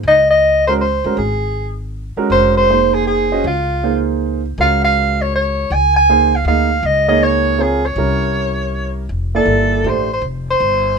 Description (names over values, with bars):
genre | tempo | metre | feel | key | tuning
jazz | 159 BPM | 3/4 | swing 64% on 8ths | Db major | A4 = 440 Hz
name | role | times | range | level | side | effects
upright bass | bass | 0.0-11.0 s | F1 to D2 | -20 LUFS | left 1 dB | none
mellow soprano saxophone | melody | 0.1-11.0 s | F4 to Ab5 | -14 LUFS | equal | none
warm grand piano | accompaniment | 0.7-10.1 s | Ab3 to Eb5 | -19 LUFS | right 5 dB | none
room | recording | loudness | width
light reverb | minimal, uncompressed stereo recording | -13 LUFS | side -5 dB against mid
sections
0.1-9.1 A section; 9.1-11.0 B section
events
soprano saxophone solo 9.1-11.0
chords
0.1 Dbmaj9; 8.0 C7b9; 9.1 Fmaj9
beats
| 0.06 0.43 0.81 | 1.19 1.56 1.94 | 2.32 2.69 3.07 | 3.45 3.82 4.20 | 4.58 4.95 5.33 | 5.71 6.08 6.46 | 6.84 7.21 7.59 | 7.97 8.34 8.72 | 9.10 9.47 9.85 | 10.23 10.61 10.98